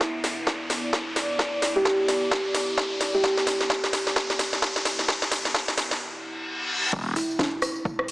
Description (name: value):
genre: bass house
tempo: 130 BPM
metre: 4/4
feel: swing 60% on 16ths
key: E minor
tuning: A4 = 435 Hz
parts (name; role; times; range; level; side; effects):
- deep dark ambient pad; sustained chords; 0.0-8.1 s; B3 to E5; -34 LUFS; equal; chorus, built-in reverb, sidechain pumping
- electronic kick drum; drums; 0.0-8.0 s; none; -30 LUFS; equal; overdrive, high-pass filter on kick, high-pass filter on room
- house drum kit; drums; 0.0-8.1 s; crash cymbal, hi-hat, rim click, snare drum; -26 LUFS; equal; overdrive, high-pass filter on snare, high-pass filter on hats, high-pass filter on cymbals, high-pass filter on room
- riser, reverse cymbal and impact; sound effects; 0.0-8.1 s; none; -30 LUFS; left 1 dB; none
- kalimba; melody; 1.8-3.8, 7.2-7.3 s; E4 to G4; -28 LUFS; right 1 dB; none
- phased detuned saw bass; bass; 6.9-7.1 s; E1; -28 LUFS; equal; phaser, overdrive, sidechain pumping
- tambourine; percussion; 6.9-8.1 s; none; -37 LUFS; left 1 dB; none
room: moderate lush hall reverb, RT60 2.0 s, digital ambience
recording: small speaker sound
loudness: -23 LUFS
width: side -21 dB against mid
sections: 0.0-6.9 A section; 6.9-8.1 B section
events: build-up 0.0-6.9; drum fill 0.0-6.0; riser 0.0-6.0; break 6.0-6.9; reverse cymbal 6.0-6.9; drop 6.9-8.1; impact 6.9-8.1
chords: 0.0 E5